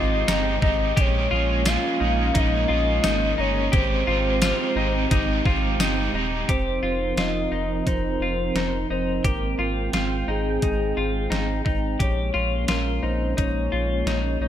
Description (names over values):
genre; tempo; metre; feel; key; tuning
dream pop; 87 BPM; 4/4; straight; Bb dorian; A4 = 440 Hz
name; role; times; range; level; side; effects
soft octave-layered synth lead; melody; 0.0-14.5 s; Ab4 to F5; -28 LUFS; left 2 dB; chorus, tremolo, ping-pong delay
crunchy overdriven guitar; accompaniment; 0.0-6.5 s; Bb2 to Ab4; -28 LUFS; right 3 dB; harmonic tremolo, wide subtle chorus
warm analog pad; sustained chords; 0.0-14.5 s; F3 to G5; -29 LUFS; right 4 dB; chorus
semi-hollow electric guitar; arpeggios; 0.0-14.5 s; Eb4 to G4; -28 LUFS; left 3 dB; lush chorus, ping-pong delay
sub bass with octave; bass; 0.0-14.5 s; Eb1 to Bb1; -26 LUFS; equal; none
detuned 8-bit digital drum machine; drums; 0.3-14.2 s; hi-hat, kick drum, snare drum, tambourine; -25 LUFS; equal; none
room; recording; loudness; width
light reverb; none; -20 LUFS; side -10 dB against mid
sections
0.0-6.5 A section; 6.5-14.5 B section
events
none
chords
0.0 Abmaj7; 1.0 Bbm7; 3.7 Abmaj7; 6.5 F7sus4; 9.2 Abmaj7; 12.0 Bbm7